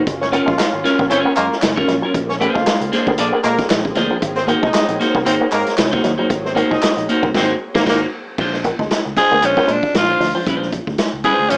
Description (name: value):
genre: funk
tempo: 116 BPM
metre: 4/4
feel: swing 56% on 16ths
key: Bb mixolydian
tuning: A4 = 440 Hz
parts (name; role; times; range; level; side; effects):
- warm studio string section; sustained chords; 0.0-8.3 s; D3 to Ab4; -28 LUFS; equal; none
- electric guitar with an envelope filter; riff; 0.0-10.4 s; F3 to Bb3; -24 LUFS; equal; warbly pitch drift
- fingered electric bass; bass; 0.0-11.6 s; Gb1 to Bb2; -31 LUFS; equal; none
- swinging big-band drum kit; drums; 0.1-11.6 s; crash cymbal, hi-hat, kick drum, snare drum; -23 LUFS; equal; none
- warm horn section; second line; 0.2-8.0 s; Bb3 to F5; -23 LUFS; equal; none
- clean electric guitar; accompaniment; 0.3-11.6 s; Ab3 to D5; -21 LUFS; equal; none
- group handclap; percussion; 0.6-7.0 s; none; -28 LUFS; equal; none
- growling tenor saxophone; melody; 9.2-11.6 s; Db4 to Ab4; -17 LUFS; equal; none
room: light reverb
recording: small speaker sound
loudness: -17 LUFS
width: mono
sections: 0.0-8.4 A section; 8.4-11.6 B section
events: band accent 7.3-8.4; break 10.5-11.6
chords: 0.1 Gbmaj7; 2.1 Bb9; 4.2 Ab9; 8.4 Bb9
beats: | 0.07 0.59 1.11 1.63 | 2.15 2.67 3.18 3.70 | 4.22 4.74 5.26 5.78 | 6.30 6.82 7.34 7.86 | 8.38 8.90 9.42 9.94 | 10.46 10.98 11.50